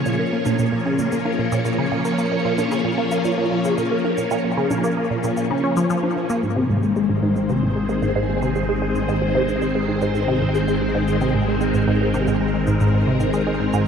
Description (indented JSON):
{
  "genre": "ambient, sequencer-driven space music",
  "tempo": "113 BPM",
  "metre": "4/4",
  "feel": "straight",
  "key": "Ab major",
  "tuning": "A4 = 440 Hz",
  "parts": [
    { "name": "phased string machine", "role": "sustained chords", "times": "0.0-13.9 s", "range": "Eb3 to Db5", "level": "-22 LUFS", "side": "equal", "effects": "ensemble chorus, phaser" },
    { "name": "resonant blip pluck", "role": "riff", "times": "0.0-13.8 s", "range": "Ab2 to Db4", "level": "-21 LUFS", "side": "equal", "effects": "phaser, ping-pong delay" },
    { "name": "cabasa and bongos", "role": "percussion", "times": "0.1-13.8 s", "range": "none", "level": "-34 LUFS", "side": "left 3 dB", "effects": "ping-pong delay" },
    { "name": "fat analog bass", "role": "bass", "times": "6.4-13.9 s", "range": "Ab1", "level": "-28 LUFS", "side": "equal", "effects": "none" }
  ],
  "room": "wet huge ambient reverb, RT60 8.7 s",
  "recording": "none",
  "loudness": "-18 LUFS",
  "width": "side -7 dB against mid",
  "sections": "0.0-6.4 A section; 6.4-13.9 A section",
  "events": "filter sweep on synth arpeggio sound 0.0-6.4; fade-in on drum 6.4-13.9",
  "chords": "0.0 Bbm7; 6.4 Ab",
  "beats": "| 0.06 0.59 1.12 1.65 | 2.18 2.71 3.25 3.78 | 4.31 4.84 5.37 5.90 | 6.43 6.96 7.49 8.03 | 8.56 9.09 9.62 10.15 | 10.68 11.21 11.74 12.27 | 12.80 13.34 13.87"
}